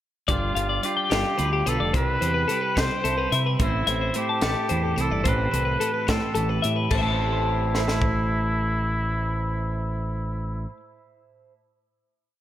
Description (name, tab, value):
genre	math rock and midwest emo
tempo	72 BPM (dotted quarters)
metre	6/8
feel	straight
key	A minor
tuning	A4 = 439 Hz
part	warm trumpet	melody	0.3-10.7 s	E4 to C5	-28 LUFS	equal	slapback echo
part	twelve-string electric guitar	accompaniment	0.3-11.7 s	A2 to A5	-30 LUFS	right 5 dB	slapback echo
part	twelve-string electric guitar	arpeggios	0.3-10.8 s	G4 to A5	-27 LUFS	left 6 dB	slapback echo
part	growling fingered electric bass	bass	0.3-10.7 s	F1 to C3	-26 LUFS	equal	overdrive
part	crisp fusion drum kit	drums	0.3-8.1 s	crash cymbal, hi-hat, kick drum, snare drum	-28 LUFS	equal	none
room	moderate scoring stage reverb, RT60 2.0 s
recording	big arena sound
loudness	-22 LUFS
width	side -12 dB against mid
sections	0.3-6.9 A section; 6.9-10.2 final chord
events	none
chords	0.3 G7; 1.9 Cmaj7; 3.6 Am; 5.3 Am7